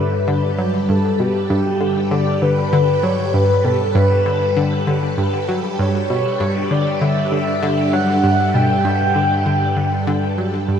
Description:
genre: ambient, sequencer-driven space music.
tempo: 98 BPM.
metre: 4/4.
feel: straight.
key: G lydian.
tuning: A4 = 440 Hz.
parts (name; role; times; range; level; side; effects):
breathy flute-like synth lead; melody; 0.0-10.8 s; G4 to G5; -20 LUFS; equal; lush chorus, shimmer reverb, ping-pong delay.
phased string machine; sustained chords; 0.0-10.8 s; G3 to G5; -24 LUFS; right 1 dB; ensemble chorus, phaser, shimmer reverb.
analog pluck; riff; 0.0-10.8 s; G2 to F#3; -19 LUFS; left 1 dB; chorus, ping-pong delay.
analog drone; bass; 0.0-10.8 s; G2; -22 LUFS; equal; chorus.
room: moderate huge ambient reverb, RT60 9.7 s.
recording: in a vast, echoing space.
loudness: -15 LUFS.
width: side -8 dB against mid.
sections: 0.0-10.8 A section.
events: fade-in on string machine 0.0-10.8; fade-out 9.1-10.8.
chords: 0.0 Gadd9.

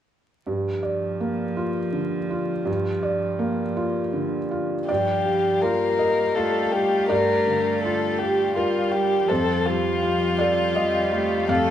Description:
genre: neoclassical piano and strings.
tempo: 82 BPM.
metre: 3/4.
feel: rubato.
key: G minor.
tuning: A4 = 440 Hz.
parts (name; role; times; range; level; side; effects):
rich cello; second line; 0.5-11.7 s; F3 to Bb3; -30 LUFS; right 2 dB; none.
felt-muted upright piano; accompaniment; 0.5-11.7 s; F2 to F5; -23 LUFS; right 1 dB; none.
dark violin; melody; 4.9-11.7 s; F4 to Bb4; -23 LUFS; left 3 dB; none.
warm chamber string section; sustained chords; 4.9-11.7 s; G3 to F5; -34 LUFS; equal; none.
room: moderate large studio reverb, RT60 1.4 s.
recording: band playing live in one room, vinyl crackle.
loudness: -20 LUFS.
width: side -10 dB against mid.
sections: 0.5-4.9 A section; 4.9-11.7 B section.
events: none.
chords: 0.5 Gm7; 9.3 Fadd9.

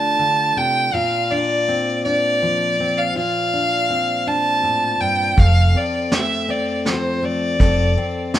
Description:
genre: acoustic folk duo or small band.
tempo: 81 BPM.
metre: 3/4.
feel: straight.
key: unclear.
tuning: A4 = 439 Hz.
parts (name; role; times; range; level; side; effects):
rich fiddle; melody; 0.0-8.3 s; C5 to A5; -19 LUFS; right 1 dB; none.
fingerpicked steel-string acoustic guitar; accompaniment; 0.0-8.4 s; F2 to A4; -23 LUFS; left 2 dB; none.
woody fretless electric bass; bass; 5.4-8.0 s; F1; -15 LUFS; equal; none.
vintage brush drum kit; drums; 5.4-8.4 s; hi-hat, kick drum, snare drum; -16 LUFS; equal; none.
room: small room ambience.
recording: rough home demo mix.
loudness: -16 LUFS.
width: side -12 dB against mid.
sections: 0.0-8.4 A section.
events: none.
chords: 0.0 Dm; 1.0 Bbadd9; 5.4 F.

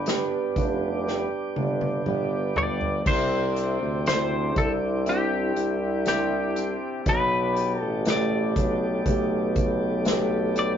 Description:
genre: pop ballad.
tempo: 60 BPM.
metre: 4/4.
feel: straight.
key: C major.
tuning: A4 = 440 Hz.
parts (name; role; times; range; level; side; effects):
twelve-string electric guitar; melody; 0.0-10.7 s; G4 to D5; -27 LUFS; left 3 dB; none.
warm concert grand piano; accompaniment; 0.0-10.8 s; B2 to G4; -29 LUFS; right 2 dB; none.
mellow tonewheel organ; sustained chords; 0.0-10.8 s; B4 to D6; -34 LUFS; left 1 dB; slow rotary speaker.
fingerpicked steel-string acoustic guitar; arpeggios; 0.0-10.8 s; G2 to B4; -37 LUFS; right 4 dB; none.
warm tuba; bass; 0.0-10.8 s; F1 to D2; -27 LUFS; equal; none.
unplugged drum kit; drums; 0.1-10.8 s; crash cymbal, hi-hat, kick drum, snare drum, toms; -28 LUFS; equal; none.
room: moderate studio reverb, RT60 0.6 s.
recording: rough rehearsal-room recording, nothing above 7.5 kHz.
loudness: -22 LUFS.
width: side -8 dB against mid.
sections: 0.0-3.1 A section; 3.1-10.8 B section.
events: drum fill 1.1-3.1.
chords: 0.0 G; 3.1 Cadd9; 7.1 Gadd9.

